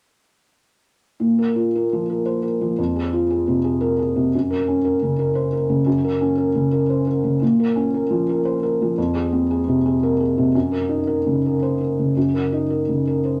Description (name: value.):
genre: neoclassical minimalist piano.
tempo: 115 BPM.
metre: 3/4.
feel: rubato.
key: Eb dorian.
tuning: A4 = 436 Hz.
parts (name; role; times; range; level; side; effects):
felt-muted upright piano; solo; 1.2-13.4 s; F2 to C5; -20 LUFS; equal; none.
room: wet studio ambience, RT60 0.5 s.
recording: none.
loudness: -20 LUFS.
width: mono.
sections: 1.2-13.4 A section.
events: none.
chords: 1.2 Bb5; 2.8 Fm; 4.3 Gb; 7.4 Bbm; 9.0 Fm; 10.5 Ebm7/Gb.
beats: | 1.21 1.74 2.26 | 2.78 3.30 3.81 | 4.33 4.85 5.36 | 5.87 6.38 6.90 | 7.42 7.93 8.45 | 8.97 9.49 10.02 | 10.54 11.08 11.62 | 12.16 12.71 13.25.